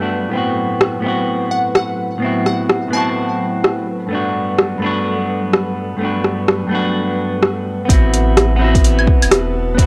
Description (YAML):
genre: future garage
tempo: 127 BPM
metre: 4/4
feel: swing 62% on 16ths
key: A dorian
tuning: A4 = 440 Hz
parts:
  - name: semi-hollow electric guitar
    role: accompaniment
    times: 0.0-9.9 s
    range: G2 to F#4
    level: -21 LUFS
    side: equal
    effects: sidechain pumping, cassette tape, analog delay
  - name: ethereal airy pad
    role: sustained chords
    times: 0.0-9.9 s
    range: G2 to A5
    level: -29 LUFS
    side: equal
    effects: ensemble chorus, built-in reverb, sidechain pumping, cassette tape
  - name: deep house drum kit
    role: drums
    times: 0.8-9.9 s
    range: claves, hi-hat, rim click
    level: -18 LUFS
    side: equal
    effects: overdrive, cassette tape
  - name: glassy wavetable pluck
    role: melody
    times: 1.5-3.6 s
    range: F#5 to A5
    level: -25 LUFS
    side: equal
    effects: chorus, cassette tape, analog delay
  - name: soft dub sub bass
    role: bass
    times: 7.9-9.9 s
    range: E1 to A1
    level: -19 LUFS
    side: equal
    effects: tube saturation, sidechain pumping
  - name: electronic kick drum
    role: drums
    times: 7.9-9.9 s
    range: none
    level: -15 LUFS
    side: equal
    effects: overdrive, cassette tape
room: moderate spring reverb, RT60 2.0 s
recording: home recording on cassette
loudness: -17 LUFS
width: mono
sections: 0.0-7.9 A section; 7.9-9.9 B section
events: none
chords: 0.3 Am69; 4.1 Gmaj9; 7.9 Am69